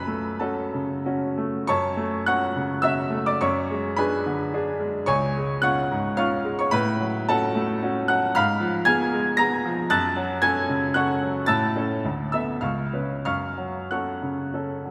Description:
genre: classical, romantic character piece for solo piano.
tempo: 90-118 BPM.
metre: 3/4.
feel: rubato.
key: F# minor.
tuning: A4 = 440 Hz.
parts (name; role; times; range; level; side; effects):
bright baby grand piano; solo; 0.0-14.9 s; C#2 to A#6; -24 LUFS; equal; none.
room: wet concert hall reverb, RT60 2.5 s.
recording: none.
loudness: -24 LUFS.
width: mono.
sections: 0.0-1.7 A section; 1.7-14.9 A section.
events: none.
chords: 0.0 F#m; 3.4 G#dim/F#; 5.1 C#; 6.7 F#m/A; 8.3 Fdim/Ab; 9.9 F#m; 11.5 A; 12.0 D5; 12.6 C#7; 13.2 F#m.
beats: 0.42 1.07 | 1.69 2.27 2.83 | 3.40 3.98 4.53 | 5.08 5.63 6.17 | 6.71 7.27 7.81 | 8.34 8.85 9.37 | 9.90 10.42 10.94 | 11.48 12.03 12.62 | 13.25 13.90 14.54.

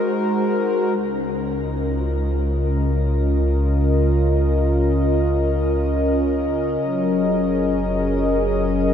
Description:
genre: ambient.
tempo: free time.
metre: none.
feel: none.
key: unclear.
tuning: A4 = 440 Hz.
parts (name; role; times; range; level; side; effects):
warm analog pad; sustained chords; 0.0-8.9 s; Db3 to Eb5; -19 LUFS; left 1 dB; chorus, shimmer reverb.
warm sub bass; bass; 1.0-8.9 s; Gb1 to Db2; -22 LUFS; equal; none.
room: wet huge ambient reverb, RT60 7.1 s.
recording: none.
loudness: -18 LUFS.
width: side -8 dB against mid.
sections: 1.0-8.9 A section.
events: none.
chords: 0.0 Ab7; 1.0 Db6; 6.8 Gb6.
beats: free time.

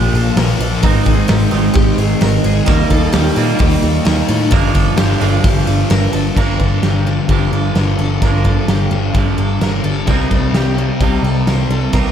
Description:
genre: rock, shoegaze and dream pop.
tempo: 130 BPM.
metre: 4/4.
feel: straight.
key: G minor.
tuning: A4 = 440 Hz.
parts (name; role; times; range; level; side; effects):
picked twelve-string acoustic guitar; arpeggios; 0.0-12.1 s; F4 to Bb4; -24 LUFS; left 1 dB; wide subtle chorus, diffuse ambient delay.
thick fuzz guitar; riff; 0.0-12.1 s; G2 to Eb4; -18 LUFS; left 7 dB; distortion, lush chorus.
twangy electric guitar; riff; 0.0-12.1 s; G2 to Eb4; -19 LUFS; right 9 dB; reverse reverb.
vintage muted picked electric bass; bass; 0.0-12.1 s; G1 to Bb2; -17 LUFS; equal; none.
big rock drum kit; drums; 0.1-12.1 s; crash cymbal, hi-hat, kick drum, snare drum; -18 LUFS; equal; none.
room: moderate plate reverb, RT60 1.7 s, small room ambience.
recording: dreamy mix soaked in reverb.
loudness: -12 LUFS.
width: side -9 dB against mid.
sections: 0.0-6.4 A section; 6.4-12.1 A section.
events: none.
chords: 0.0 Bbmaj7; 0.8 Abmaj7; 2.7 Eb; 4.5 Gm7; 10.1 Cm7.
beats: 0.38 | 0.84 1.30 1.76 2.22 | 2.68 3.14 3.60 4.06 | 4.52 4.98 5.44 5.91 | 6.37 6.83 7.30 7.76 | 8.22 8.69 9.15 9.62 | 10.08 10.55 11.01 11.48 | 11.94.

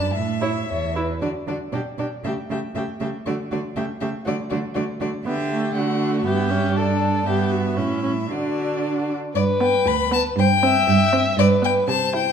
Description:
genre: quick classical-period movement for string quartet.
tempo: 118 BPM.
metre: 2/4.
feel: rubato.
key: D major.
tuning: A4 = 441 Hz.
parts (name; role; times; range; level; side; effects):
rich violin; melody; 0.0-12.3 s; D5 to B5; -26 LUFS; left 8 dB; none.
rich cello; bass; 0.0-12.3 s; D2 to D3; -24 LUFS; right 4 dB; none.
dark violin; second line; 0.4-12.3 s; E4 to E5; -25 LUFS; left 2 dB; none.
warm viola; accompaniment; 0.4-12.3 s; A3 to E4; -27 LUFS; right 2 dB; none.
room: wet recital hall reverb, RT60 1.6 s.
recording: minimal, uncompressed stereo recording.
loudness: -19 LUFS.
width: side -7 dB against mid.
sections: 0.0-1.2 A section; 1.2-9.4 B section; 9.4-12.3 A section.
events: none.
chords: 0.1 A; 1.2 N.C.; 1.7 G; 2.3 A7/C#; 3.3 D5; 3.8 A/C#; 4.3 D; 6.3 G6; 7.3 Em/G; 7.8 A; 8.3 D; 9.4 G; 10.4 C/G; 11.4 G.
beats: | 0.15 0.69 | 1.22 1.74 | 2.25 2.77 | 3.27 3.78 | 4.28 4.77 | 5.27 5.76 | 6.26 6.76 | 7.27 7.78 | 8.30 8.83 | 9.35 9.87 | 10.38 10.88 | 11.38 11.88.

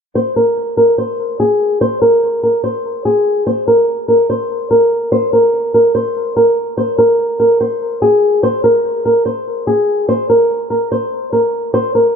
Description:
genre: hip hop.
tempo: 145 BPM.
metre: 4/4.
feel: half-time.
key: unclear.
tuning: A4 = 439 Hz.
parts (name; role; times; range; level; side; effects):
flamenco guitar; melody; 0.2-12.2 s; Ab4 to C5; -11 LUFS; equal; ping-pong delay.
room: moderate plate reverb, RT60 2.8 s.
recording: low-pass filter.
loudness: -11 LUFS.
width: side -6 dB against mid.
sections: 0.2-12.2 A section.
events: filter sweep 0.2-12.2.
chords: none.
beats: | 0.15 0.57 0.98 1.40 | 1.81 2.22 2.64 3.05 | 3.47 3.88 4.29 4.71 | 5.12 5.54 5.95 6.36 | 6.78 7.19 7.60 8.02 | 8.43 8.85 9.26 9.67 | 10.09 10.50 10.91 11.33 | 11.74 12.15.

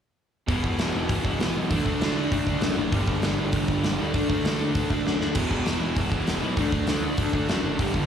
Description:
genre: punk rock.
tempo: 197 BPM.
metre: 4/4.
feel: straight.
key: unclear.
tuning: A4 = 440 Hz.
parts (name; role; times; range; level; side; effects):
crunchy overdriven guitar; riff; 0.5-8.1 s; E2 to D4; -31 LUFS; equal; slapback echo.
distorted electric guitar; riff; 0.5-8.1 s; E2 to D4; -30 LUFS; right 9 dB; distortion.
overdriven electric guitar; riff; 0.5-8.1 s; E2 to D4; -30 LUFS; left 10 dB; slapback echo.
fuzz picked electric bass; bass; 0.5-8.1 s; E1 to F#2; -29 LUFS; equal; overdrive.
big rock drum kit; drums; 0.5-8.0 s; crash cymbal, hi-hat, kick drum, snare drum; -27 LUFS; equal; none.
room: light reverb.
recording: live gig heard through the venue's PA, club reverb.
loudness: -22 LUFS.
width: side -8 dB against mid.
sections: 0.5-8.1 A section.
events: drum fill 5.1-5.4.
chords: 0.5 E5; 1.7 D; 2.9 G5; 4.1 D5; 5.4 E5; 6.6 D.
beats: | 0.49 0.79 1.10 1.40 | 1.71 2.01 2.32 2.62 | 2.92 3.23 3.53 3.84 | 4.14 4.45 4.75 5.05 | 5.36 5.66 5.96 6.27 | 6.57 6.88 7.18 7.48 | 7.79.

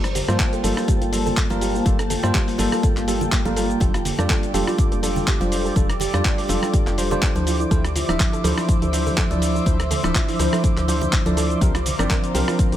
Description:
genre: deep house.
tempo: 123 BPM.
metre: 4/4.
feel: swing 55% on 16ths.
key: G dorian.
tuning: A4 = 440 Hz.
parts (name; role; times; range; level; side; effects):
airy breathy pad; sustained chords; 0.0-12.8 s; A4 to D6; -30 LUFS; equal; chorus, phaser, sidechain pumping.
woody FM bass; bass; 0.0-12.8 s; D1 to G2; -25 LUFS; equal; sidechain pumping.
dusty soul sampler-style drum kit; drums; 0.0-12.8 s; handclaps, hi-hat, rim click, shaker; -26 LUFS; equal; none.
granular cloud pad; texture; 0.0-12.8 s; F3 to E6; -30 LUFS; equal; built-in reverb, sidechain pumping.
soft round pluck; arpeggios; 0.1-12.8 s; E4 to Bb4; -31 LUFS; right 4 dB; chorus, cassette tape, sidechain pumping, tape echo.
congas; percussion; 0.2-12.5 s; none; -31 LUFS; right 1 dB; none.
bell-like tine electric piano; stabs; 0.3-12.8 s; F3 to E5; -24 LUFS; equal; sidechain pumping, ping-pong delay.
electronic kick drum; drums; 0.4-12.7 s; none; -20 LUFS; equal; none.
room: little or no reverb.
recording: none.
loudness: -18 LUFS.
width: side -12 dB against mid.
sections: 0.0-12.8 A section.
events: none.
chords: 0.0 Gm9; 3.8 F69; 7.5 Dm9; 11.6 C9sus4.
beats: 0.40 0.88 1.37 | 1.86 2.35 2.83 3.32 | 3.81 4.30 4.79 5.27 | 5.76 6.25 6.74 7.22 | 7.71 8.20 8.69 9.18 | 9.66 10.15 10.64 11.13 | 11.62 12.10 12.59.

